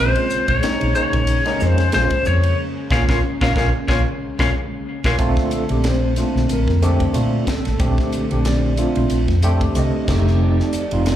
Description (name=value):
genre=electric jazz fusion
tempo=92 BPM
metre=4/4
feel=swing 56% on 16ths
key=Bb major from 5.2 s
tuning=A4 = 440 Hz
part: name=lightly driven lead guitar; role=melody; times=0.0-5.2 s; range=Bb4 to F5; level=-21 LUFS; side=left 3 dB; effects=slapback echo
part: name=overdriven tine electric piano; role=accompaniment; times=0.0-11.2 s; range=Ab3 to Eb5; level=-22 LUFS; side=right 1 dB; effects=fast tremolo, lush chorus, slapback echo
part: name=ensemble organ-string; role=sustained chords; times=0.0-11.2 s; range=Bb2 to A4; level=-28 LUFS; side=equal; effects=ensemble chorus
part: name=woody fretless electric bass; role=bass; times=0.0-11.2 s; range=F1 to Bb2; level=-18 LUFS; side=equal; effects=none
part: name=crisp fusion drum kit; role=drums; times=0.2-11.2 s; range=crash cymbal, hi-hat, kick drum, ride cymbal, snare drum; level=-24 LUFS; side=equal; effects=none
room=light reverb, small room reverb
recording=live gig heard through the venue's PA, club reverb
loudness=-16 LUFS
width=side -11 dB against mid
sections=0.0-5.2 A section; 5.2-11.2 B section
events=drum fill 2.6-5.2; band accent 2.6-5.2; tine electric piano fill 3.2-5.2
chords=0.0 Bbm7; 5.2 Bbmaj9; 10.1 F9